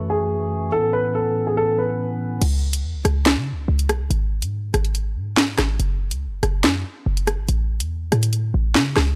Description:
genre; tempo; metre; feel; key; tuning
hip hop, drill; 142 BPM; 4/4; half-time; unclear; A4 = 440 Hz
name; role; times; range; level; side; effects
pipe organ, stopped flute; sustained chords; 0.0-2.4 s; F#2 to F#4; -27 LUFS; equal; none
dark grand piano; melody; 0.1-2.4 s; G#4 to B4; -24 LUFS; equal; low-pass filter
short 808-style bass; bass; 2.4-9.2 s; F#1 to C#3; -23 LUFS; equal; none
drill drum kit; drums; 2.4-9.1 s; crash cymbal, finger snaps, hi-hat, rim click, snare drum; -22 LUFS; equal; overdrive
room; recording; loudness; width
small room ambience; dry, gritty hardware recording; -21 LUFS; mono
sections
0.0-2.4 A section; 2.4-9.2 B section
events
none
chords
0.0 F#m7; 0.7 Aadd9; 2.4 N.C.; 5.8 F#5; 7.5 A

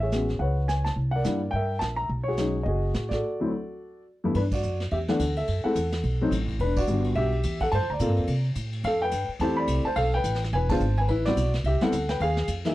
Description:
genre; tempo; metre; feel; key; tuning
jazz piano trio; 214 BPM; 4/4; swing 60% on 8ths; G major from 4.4 s; A4 = 440 Hz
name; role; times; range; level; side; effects
dark grand piano; melody; 0.0-12.7 s; D2 to B5; -26 LUFS; left 1 dB; none
upright bass; bass; 0.0-12.7 s; E1 to C3; -27 LUFS; equal; none
vintage brush drum kit; drums; 0.1-12.7 s; brushed snare drum, crash cymbal, hi-hat, kick drum, ride cymbal, snare drum; -36 LUFS; equal; none
room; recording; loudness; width
little or no reverb; dry, close 1970s-style studio recording; -23 LUFS; side -16 dB against mid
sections
0.0-4.4 A section; 4.4-12.7 B section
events
break 3.2-4.4; band accent 4.5, 6.7, 10.7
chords
0.0 Amaj13; 1.0 C9; 2.1 B69; 3.2 D; 4.4 G5; 5.5 F#m7; 6.0 B7(no3); 6.6 Em9; 7.7 Gm11; 8.3 Csus2; 8.8 Fmaj9; 10.0 G9; 10.5 E; 11.1 Am9; 12.2 Ab5

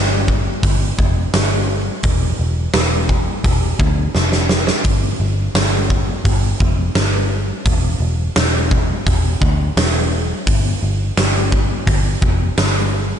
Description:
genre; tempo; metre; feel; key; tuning
rock, shoegaze and dream pop; 85 BPM; 4/4; straight; unclear; A4 = 440 Hz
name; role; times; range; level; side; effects
vintage muted picked electric bass; bass; 0.0-13.1 s; E1 to D2; -18 LUFS; equal; none
huge arena drum kit; drums; 0.3-12.7 s; hi-hat, kick drum, snare drum; -17 LUFS; equal; none
room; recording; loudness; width
little or no reverb; nothing above 10.5 kHz; -14 LUFS; side -9 dB against mid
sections
0.0-13.2 A section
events
drum fill 4.1-4.8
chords
none

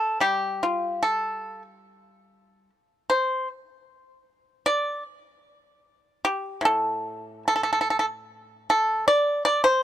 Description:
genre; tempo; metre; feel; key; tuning
chinese traditional, Chinese solo plucked strings; 70-80 BPM; 2/4; rubato; A jue mode; A4 = 440 Hz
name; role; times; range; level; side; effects
pipa; solo; 0.0-9.8 s; A2 to D5; -21 LUFS; equal; none
room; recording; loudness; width
little or no reverb; dry, close 1970s-style studio recording; -22 LUFS; side -11 dB against mid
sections
0.0-8.3 A section; 8.3-9.8 B section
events
none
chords
none

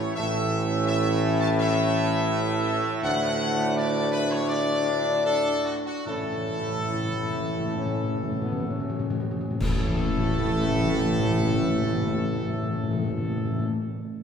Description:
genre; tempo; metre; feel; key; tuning
classical, ceremonial fanfare; 62-85 BPM; 4/4; straight; A major; A4 = 440 Hz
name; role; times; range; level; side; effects
bright trumpet section; melody; 0.0-13.7 s; F#4 to A5; -30 LUFS; left 1 dB; none
clear trombone section; sustained chords; 0.0-13.7 s; A2 to A3; -30 LUFS; equal; none
dark French horn section; sustained chords; 0.0-13.7 s; A3 to E4; -30 LUFS; left 3 dB; none
mellow tuba; bass; 0.0-13.7 s; A1 to D2; -28 LUFS; right 3 dB; none
timpani; percussion; 6.1-13.7 s; A2; -28 LUFS; left 3 dB; none
clash cymbals and concert bass drum; percussion; 9.6-11.4 s; none; -32 LUFS; equal; none
room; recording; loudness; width
wet scoring stage reverb, RT60 1.8 s; heard from further back in the room; -23 LUFS; side -7 dB against mid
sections
0.0-9.6 A section; 9.6-13.3 B section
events
slowing down 1.6-9.6; timpani fill 6.1-9.6; band accent 9.6-10.5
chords
0.0 A; 3.0 D; 6.1 A

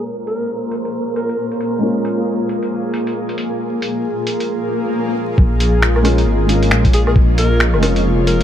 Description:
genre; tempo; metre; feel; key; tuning
future garage; 135 BPM; 4/4; swing 60% on 16ths; Bb minor; A4 = 439 Hz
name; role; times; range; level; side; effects
felt-muted upright piano; accompaniment; 0.0-8.4 s; Ab3 to Bb4; -23 LUFS; right 2 dB; sidechain pumping, ping-pong delay
granular cloud pad; sustained chords; 0.0-8.4 s; Bb3 to Db5; -20 LUFS; left 1 dB; built-in reverb, sidechain pumping
flickering grainy texture; texture; 0.0-8.4 s; Bb4 to Eb5; -30 LUFS; right 1 dB; built-in reverb
breathy alto saxophone; melody; 0.3-1.5, 6.9-8.4 s; Ab4 to Bb4; -25 LUFS; equal; dub echo
lo-fi sampler-style drum kit; drums; 0.3-8.4 s; finger snaps, hi-hat, woodblock; -21 LUFS; left 1 dB; overdrive
swell; sound effects; 4.6-5.4 s; none; -27 LUFS; left 1 dB; none
dark detuned saw bass; bass; 5.4-8.4 s; F1 to Bb1; -15 LUFS; equal; tube saturation, sidechain pumping
electronic kick drum; drums; 5.4-7.3 s; none; -13 LUFS; equal; overdrive
room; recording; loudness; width
light reverb; vinyl crackle, low-pass filter; -14 LUFS; side -10 dB against mid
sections
0.0-5.4 A section; 5.4-8.4 B section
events
filter sweep on ambient pad 0.0-5.4; filter sweep on felt piano 0.0-5.4; filter sweep 0.0-5.4; swell 4.6-5.4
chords
0.0 Bbm7

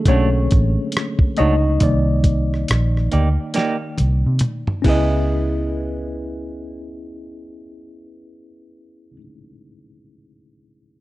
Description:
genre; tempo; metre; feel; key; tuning
R&B, neo-soul; 69 BPM; 4/4; swing 61% on 16ths; C# dorian; A4 = 437 Hz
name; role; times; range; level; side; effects
tine electric piano; accompaniment; 0.0-11.0 s; D3 to D#5; -23 LUFS; left 1 dB; overdrive, fast stereo tremolo
semi-hollow electric guitar; second line; 0.1-9.2 s; A3 to D#5; -25 LUFS; right 4 dB; spring reverb
vintage muted fingered electric bass; bass; 0.1-9.1 s; A1 to C3; -18 LUFS; equal; none
dusty soul sampler-style drum kit; drums; 0.1-5.1 s; crash cymbal, hi-hat, kick drum, rim click, snare drum, toms; -19 LUFS; equal; none
room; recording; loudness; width
digital ambience; dry, close 1970s-style studio recording; -16 LUFS; side -17 dB against mid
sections
0.0-5.3 A section; 5.3-8.8 B section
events
tine electric piano solo 0.0-5.3; drum fill 3.5-5.3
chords
0.0 Bm9; 1.8 Cm9; 4.8 C#m9

